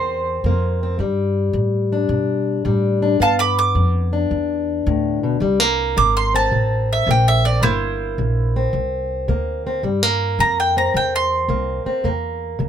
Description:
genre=acoustic country blues, solo or duo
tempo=108 BPM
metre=4/4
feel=swing 67% on 8ths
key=C mixolydian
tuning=A4 = 441 Hz
part: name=bowl-back mandolin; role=melody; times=0.0-12.7 s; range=E4 to D6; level=-19 LUFS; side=right 2 dB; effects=none
part: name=fingerpicked plugged-in steel-string acoustic guitar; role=accompaniment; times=0.0-12.7 s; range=G2 to D4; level=-20 LUFS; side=left 2 dB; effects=none
part: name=upright bass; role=bass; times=0.0-12.7 s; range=G1 to B2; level=-22 LUFS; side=equal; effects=none
room=moderate booth ambience, RT60 0.3 s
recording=minimal, uncompressed stereo recording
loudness=-16 LUFS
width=side -9 dB against mid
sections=0.0-9.8 A section; 9.8-12.7 B section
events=mandolin solo 9.8-12.7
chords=0.0 C7; 1.0 G7; 5.4 C7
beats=0.44 | 0.99 1.54 2.10 2.65 | 3.20 3.75 4.31 4.86 | 5.41 5.97 6.52 7.07 | 7.62 8.18 8.73 9.28 | 9.83 10.39 10.94 11.49 | 12.04 12.59

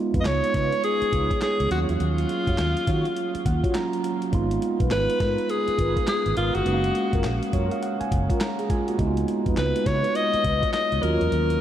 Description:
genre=R&B, new jack swing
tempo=103 BPM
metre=4/4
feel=swing 62% on 16ths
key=G# dorian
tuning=A4 = 440 Hz
part: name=tine electric piano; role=accompaniment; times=0.0-11.6 s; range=F#3 to A#5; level=-27 LUFS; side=right 3 dB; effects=none
part: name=mellow synth brass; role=stabs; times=0.1-11.2 s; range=D#4 to C#5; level=-34 LUFS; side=equal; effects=chorus, tape echo
part: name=vintage muted fingered electric bass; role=bass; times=0.1-11.6 s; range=F#1 to D#3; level=-26 LUFS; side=equal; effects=none
part: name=dusty soul sampler-style drum kit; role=drums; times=0.1-11.6 s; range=handclaps, hi-hat, kick drum, snare drum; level=-29 LUFS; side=equal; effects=none
part: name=bright alto saxophone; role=melody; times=0.2-11.6 s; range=E#4 to D#5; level=-25 LUFS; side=left 1 dB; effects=tape echo
room=wet cathedral reverb, RT60 6.5 s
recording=dreamy mix soaked in reverb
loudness=-21 LUFS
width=side -11 dB against mid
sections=0.0-11.6 A section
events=tine electric piano fill 3.2-4.3, 7.2-9.0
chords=0.0 C#9; 1.7 D#m9; 4.3 G#m69; 6.7 F#maj7; 9.0 C#9; 11.0 D#m9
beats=0.25 0.83 1.42 | 2.00 2.58 3.16 3.75 | 4.33 4.91 5.50 6.08 | 6.66 7.24 7.83 8.41 | 8.99 9.57 10.15 10.74 | 11.32

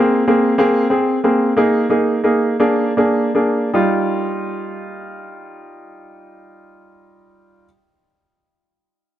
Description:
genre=pop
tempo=50-64 BPM (dotted quarters)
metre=6/8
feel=straight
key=Eb major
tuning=A4 = 438 Hz
part: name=bright upright piano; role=accompaniment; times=0.0-7.7 s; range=G3 to Ab4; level=-15 LUFS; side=equal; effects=none
room=moderate plate reverb, RT60 3.7 s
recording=none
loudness=-14 LUFS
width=side -12 dB against mid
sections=0.0-3.7 A section; 3.7-8.6 B section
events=slowing down 0.0-3.7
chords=0.0 Abadd9; 1.6 Bb7sus4; 2.6 Bb7; 3.7 Ebadd9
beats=0.58 | 1.55 2.60 | 3.75 4.96 | 6.17 7.38

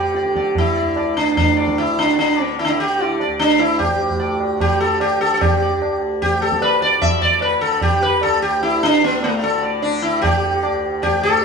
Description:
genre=indian classical, Hindustani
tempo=149 BPM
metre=4/4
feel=straight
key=D raga durga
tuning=A4 = 440 Hz
part: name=sitar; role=melody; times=0.0-11.4 s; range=A3 to E5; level=-16 LUFS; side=equal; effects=none
part: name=tanpura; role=drone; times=0.0-11.4 s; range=D2 to D3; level=-26 LUFS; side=equal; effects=none
part: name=tabla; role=percussion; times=0.1-11.4 s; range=none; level=-23 LUFS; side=equal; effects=none
room=wet large studio reverb, RT60 1.2 s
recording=band playing live in one room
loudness=-15 LUFS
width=side -5 dB against mid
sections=0.0-11.4 A section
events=none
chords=none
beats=0.15 | 0.56 0.96 1.37 1.77 | 2.18 2.58 2.99 3.39 | 3.79 4.20 4.60 5.01 | 5.41 5.81 6.21 6.62 | 7.02 7.42 7.82 8.22 | 8.63 9.03 9.43 9.83 | 10.23 10.63 11.03 11.43

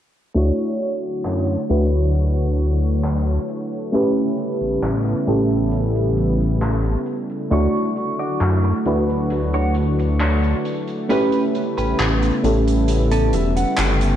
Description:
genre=vaporwave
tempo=67 BPM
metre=4/4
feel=straight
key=D major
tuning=A4 = 441 Hz
part: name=mellow FM electric piano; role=accompaniment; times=0.3-14.2 s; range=A3 to C#6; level=-21 LUFS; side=equal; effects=analog chorus, tape echo
part: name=lush unison pad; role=sustained chords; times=1.1-14.2 s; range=C#3 to C#5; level=-26 LUFS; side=equal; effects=chorus
part: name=chorused synth bass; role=bass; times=0.4-14.2 s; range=E1 to F#2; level=-19 LUFS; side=equal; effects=none
part: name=soft-mallet drum kit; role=drums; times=0.4-14.2 s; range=handclaps, hi-hat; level=-30 LUFS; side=equal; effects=gated reverb
part: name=clean electric guitar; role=riff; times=7.5-14.2 s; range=C#4 to G5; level=-27 LUFS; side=right 2 dB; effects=wide subtle chorus, tape echo
room=light reverb, small room ambience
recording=low-pass filter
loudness=-17 LUFS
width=side -10 dB against mid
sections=0.4-14.2 A section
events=filter sweep 0.4-14.2; clean electric guitar fill 12.9-14.2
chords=0.4 Dmaj7; 3.9 A9; 7.5 Dmaj7; 11.1 A9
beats=| 0.35 1.25 2.14 3.04 | 3.93 4.83 5.72 6.62 | 7.51 8.41 9.31 10.20 | 11.10 11.99 12.89 13.78

